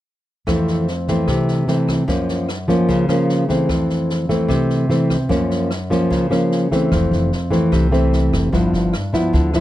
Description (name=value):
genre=bossa nova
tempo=149 BPM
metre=4/4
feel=straight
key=F major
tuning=A4 = 440 Hz
part: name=nylon-string guitar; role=accompaniment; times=0.5-9.6 s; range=F2 to E4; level=-16 LUFS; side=equal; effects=none
part: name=open jazz drum kit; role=drums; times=0.5-9.6 s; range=kick drum, rim click, snare drum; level=-27 LUFS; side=equal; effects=none
part: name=upright bass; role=bass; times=6.9-9.6 s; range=F1 to D2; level=-19 LUFS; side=equal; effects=none
room=moderate booth ambience, RT60 0.2 s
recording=dry, close 1970s-style studio recording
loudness=-15 LUFS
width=side -14 dB against mid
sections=0.5-6.9 A section; 6.9-9.6 B section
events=none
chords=0.5 Fmaj7; 2.1 Gbmaj7; 3.7 Fmaj7; 5.3 Gbmaj7; 6.9 Fmaj7; 8.5 G6